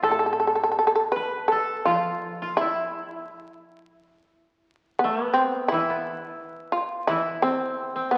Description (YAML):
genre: japanese traditional, Japanese chamber music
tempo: 86 BPM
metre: 4/4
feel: rubato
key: A hirajoshi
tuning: A4 = 440 Hz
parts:
  - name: shamisen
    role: melody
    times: 0.0-8.2 s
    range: B3 to B4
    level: -26 LUFS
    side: equal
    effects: none
  - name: koto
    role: second line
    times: 0.0-8.2 s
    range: B3 to B4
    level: -32 LUFS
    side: equal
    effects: none
  - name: koto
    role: accompaniment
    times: 0.0-8.2 s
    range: A2 to B3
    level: -36 LUFS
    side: equal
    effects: none
room: wet concert hall reverb, RT60 1.9 s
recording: very old 78 rpm record, vinyl crackle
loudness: -25 LUFS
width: mono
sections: 0.1-8.2 A section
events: none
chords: none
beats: | 0.05 0.79 1.52 2.24 | 2.96 3.66 4.35 5.04 | 5.73 6.42 7.11 7.81